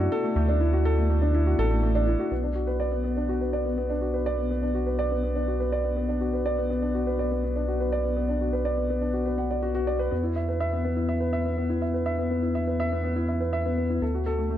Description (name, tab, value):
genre	piano and strings electronica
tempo	123 BPM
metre	4/4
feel	straight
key	B minor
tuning	A4 = 445 Hz
part	dark upright piano	riff	0.0-14.6 s	A3 to F#5	-26 LUFS	left 1 dB	digital delay
part	round analog bass	bass	0.0-14.6 s	A1 to E2	-27 LUFS	right 1 dB	none
room	light reverb, small room ambience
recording	none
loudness	-24 LUFS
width	side -11 dB against mid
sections	0.0-2.3 A section; 2.3-14.6 B section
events	none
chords	0.0 Dadd9; 2.3 Bm; 10.1 E5; 14.0 D